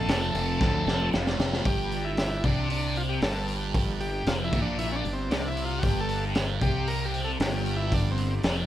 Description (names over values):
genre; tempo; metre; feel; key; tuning
psychedelic rock; 115 BPM; 4/4; straight; G minor; A4 = 442 Hz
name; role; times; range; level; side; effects
combo organ; melody; 0.0-8.3 s; C4 to Bb4; -32 LUFS; equal; slapback echo
bright tonewheel organ; sustained chords; 0.0-8.7 s; D3 to D5; -42 LUFS; right 4 dB; none
thick fuzz guitar; riff; 0.0-8.7 s; F2 to F4; -31 LUFS; equal; distortion, phaser
fuzz fingered electric bass; bass; 0.0-8.7 s; F1 to D2; -30 LUFS; equal; overdrive
crunchy breakbeat drum kit; drums; 0.1-8.6 s; hi-hat, kick drum, snare drum; -29 LUFS; equal; none
congas; percussion; 0.3-1.5 s; none; -38 LUFS; right 3 dB; none
room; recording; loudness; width
studio reverb; none; -24 LUFS; side -12 dB against mid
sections
0.0-1.7 A section; 1.7-8.7 B section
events
drum fill 0.6-1.7; transistor combo organ solo 1.7-8.7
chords
0.0 F; 1.7 Gm